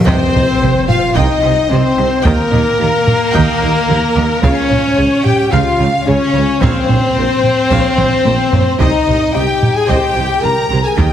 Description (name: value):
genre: cinematic, epic orchestral film score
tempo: 110 BPM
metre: 4/4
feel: straight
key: unclear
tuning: A4 = 440 Hz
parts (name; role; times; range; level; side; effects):
- timpani; percussion; 0.0-0.1, 6.6-7.4 s; Bb2; -20 LUFS; equal; none
- reverse cymbal and sub drop; sound effects; 0.0-2.2 s; none; -25 LUFS; equal; none
- warm symphonic violin section; melody; 0.1-11.1 s; Bb4 to Bb5; -22 LUFS; left 3 dB; none
- hollow concert flute; second line; 0.1-11.1 s; Bb4 to Bb5; -20 LUFS; left 1 dB; none
- rich symphonic violin section; second line; 0.1-11.1 s; Bb4 to Bb5; -24 LUFS; left 2 dB; none
- warm symphonic viola section; accompaniment; 0.1-11.1 s; Eb4 to G5; -24 LUFS; right 1 dB; none
- clear French horn section; sustained chords; 0.1-11.1 s; Bb3 to Bb4; -15 LUFS; left 3 dB; none
- mellow tuba; bass; 0.1-11.1 s; Bb1 to Eb2; -21 LUFS; right 3 dB; none
- rich symphonic cello section; bass; 0.1-11.1 s; Bb2 to Eb3; -22 LUFS; right 3 dB; none
- rich symphonic double bass section; bass; 0.1-11.1 s; Bb1 to Eb2; -20 LUFS; right 3 dB; none
- taiko ensemble; drums; 0.1-11.1 s; none; -18 LUFS; right 1 dB; none
room: wet concert hall reverb, RT60 2.1 s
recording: heavily compressed radio sound, multiband compression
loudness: -10 LUFS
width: side -10 dB against mid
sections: 0.1-11.1 A section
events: impact 0.1-2.2; drum fill 8.0-8.8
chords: 0.1 Cm; 2.2 Eb; 4.4 Db; 6.6 Bbmadd9; 8.8 Cm